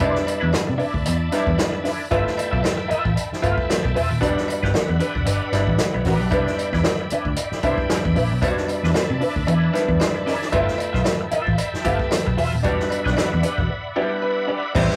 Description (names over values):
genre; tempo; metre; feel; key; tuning
funk; 114 BPM; 4/4; swing 56% on 16ths; unclear; A4 = 440 Hz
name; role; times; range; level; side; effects
electric guitar at the edge of break-up; accompaniment; 0.0-14.9 s; C4 to F5; -28 LUFS; equal; wah
bright tonewheel organ; sustained chords; 0.0-14.7 s; D5 to B5; -32 LUFS; equal; slow rotary speaker, chorus vibrato
bright clav; stabs; 0.0-15.0 s; F#3 to D5; -27 LUFS; equal; none
vintage muted picked electric bass; bass; 0.0-14.9 s; D#1 to C3; -25 LUFS; equal; none
vintage drum kit; drums; 0.0-15.0 s; crash cymbal, hi-hat, kick drum, snare drum; -27 LUFS; equal; none
cowbell; percussion; 0.0-14.9 s; none; -34 LUFS; equal; none
room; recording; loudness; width
moderate studio ambience, RT60 0.5 s; rough rehearsal-room recording, warm saturation; -21 LUFS; mono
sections
0.0-14.7 A section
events
clav fill 9.5-10.5, 13.7-14.7; break 13.7-14.7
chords
0.0 Cmaj9; 2.1 G13; 4.2 Em7; 6.3 Cmaj9; 10.5 G13; 12.6 Em7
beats
| 0.01 0.54 1.06 1.59 | 2.12 2.64 3.17 3.69 | 4.22 4.75 5.27 5.80 | 6.32 6.85 7.38 7.90 | 8.43 8.96 9.48 10.01 | 10.54 11.06 11.59 12.12 | 12.64 13.17 13.69 14.22 | 14.74